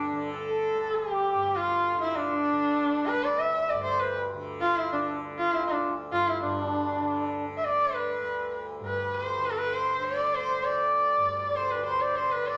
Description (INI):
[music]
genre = indian classical, Hindustani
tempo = 99 BPM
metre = 7/4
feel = straight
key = D raga bageshri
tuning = A4 = 439 Hz
[part]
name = rich sarangi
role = melody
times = 0.0-12.6 s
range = D4 to E5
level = -29 LUFS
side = equal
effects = none
[part]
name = hand-pumped harmonium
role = second line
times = 0.0-12.6 s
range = D4 to E5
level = -35 LUFS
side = equal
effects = none
[part]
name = tanpura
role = drone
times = 0.0-12.6 s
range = D2 to D3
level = -40 LUFS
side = equal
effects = none
[sound]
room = moderate large studio reverb, RT60 0.8 s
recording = none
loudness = -28 LUFS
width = mono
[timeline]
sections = 0.0-6.4 A section; 6.4-12.6 B section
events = none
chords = none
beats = 0.34 0.95 1.56 | 2.17 2.78 3.39 4.00 4.61 5.22 5.82 | 6.43 7.03 7.64 8.24 8.85 9.45 10.05 | 10.65 11.25 11.85 12.45